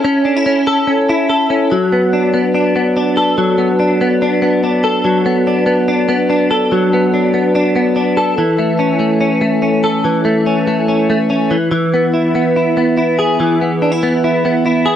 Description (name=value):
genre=indie pop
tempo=144 BPM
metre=4/4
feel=straight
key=unclear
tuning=A4 = 441 Hz
part: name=direct-recorded clean electric guitar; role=solo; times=0.0-15.0 s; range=E3 to A4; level=-12 LUFS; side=equal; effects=ensemble chorus
room=light reverb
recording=dry, close 1970s-style studio recording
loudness=-11 LUFS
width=side -10 dB against mid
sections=0.0-1.7 A section; 1.7-15.0 B section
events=none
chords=0.0 A/C#; 1.7 Bm7; 8.4 A/E; 11.5 E